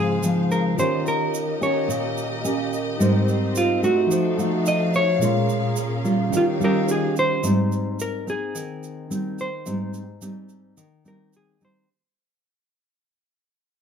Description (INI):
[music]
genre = bossa nova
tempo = 108 BPM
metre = 4/4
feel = straight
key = Ab major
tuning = A4 = 437 Hz
[part]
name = hollow-body jazz guitar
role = melody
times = 0.0-11.9 s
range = F4 to Eb5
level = -24 LUFS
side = equal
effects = plate reverb
[part]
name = bright tine electric piano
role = accompaniment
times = 0.0-7.5 s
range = Bb2 to C6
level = -28 LUFS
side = right 2 dB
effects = medium stereo tremolo
[part]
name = nylon-string guitar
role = accompaniment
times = 0.0-11.9 s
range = Ab2 to G4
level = -23 LUFS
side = equal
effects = none
[part]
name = warm symphonic string section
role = sustained chords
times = 0.0-7.4 s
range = C4 to F5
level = -31 LUFS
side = left 2 dB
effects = none
[part]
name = tube shaker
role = percussion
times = 0.2-11.9 s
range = none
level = -36 LUFS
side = right 7 dB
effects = none
[sound]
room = moderate small room reverb, RT60 0.6 s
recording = none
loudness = -20 LUFS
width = side -7 dB against mid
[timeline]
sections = 0.0-7.4 A section; 7.4-11.9 B section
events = fade-out 7.4-11.9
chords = 0.0 Dbmaj7; 0.8 Eb7; 3.0 Abmaj7; 4.1 F7b9; 5.2 Bbm7; 6.3 Eb9; 7.4 Abmaj7